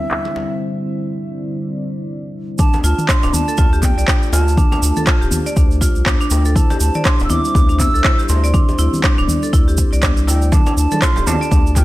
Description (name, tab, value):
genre	afro house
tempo	121 BPM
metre	4/4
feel	swing 59% on 16ths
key	D minor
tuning	A4 = 440 Hz
part	mellow hollow silver concert flute	melody	0.0-11.8 s	E5 to E6	-24 LUFS	right 2 dB	dub echo
part	dark analog pad	sustained chords	0.0-11.8 s	D3 to G5	-26 LUFS	equal	chorus, sidechain pumping
part	afro-pop drum kit	drums	0.1-11.8 s	handclaps, rim click, toms	-21 LUFS	equal	low-pass filter on snare, studio reverb, low-pass filter on toms
part	djembe	percussion	0.1-11.8 s	none	-25 LUFS	left 2 dB	none
part	congas	percussion	0.3, 10.5-11.8 s	none	-26 LUFS	right 4 dB	none
part	marimba with hard mallets	arpeggios	2.6-11.8 s	D4 to D5	-22 LUFS	equal	sidechain pumping, dub echo
part	electronic kick drum	drums	2.6-11.8 s	none	-15 LUFS	equal	studio reverb
part	tube shaker	percussion	2.6-11.8 s	none	-27 LUFS	right 5 dB	none
part	round analog bass	bass	2.8-11.8 s	D1 to D2	-16 LUFS	equal	sidechain pumping
room	small room ambience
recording	none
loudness	-13 LUFS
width	side -17 dB against mid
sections	0.0-2.6 A section; 2.6-11.8 B section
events	break 0.6-2.6; drop 2.6-11.8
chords	0.0 C/D; 2.6 Dm; 6.6 C/D; 10.5 Dm